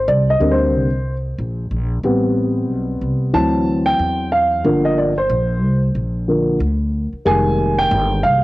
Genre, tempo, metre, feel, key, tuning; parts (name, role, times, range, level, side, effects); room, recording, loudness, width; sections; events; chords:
hip hop, jazz-hop; 92 BPM; 4/4; swing 61% on 16ths; A4 = 440 Hz
dark baby grand piano; accompaniment; 0.0-8.4 s; D3 to A5; -16 LUFS; equal; cassette tape
upright bass; bass; 0.0-8.4 s; F1 to Fb2; -20 LUFS; equal; transformer saturation
light reverb, small room ambience; home recording on cassette; -15 LUFS; side -18 dB against mid
0.0-8.4 A section
grand piano solo 0.0-8.4
0.0 Abmaj9#11 (rootless); 2.0 Am7; 3.3 D7; 4.6 Gm7; 7.3 Fm11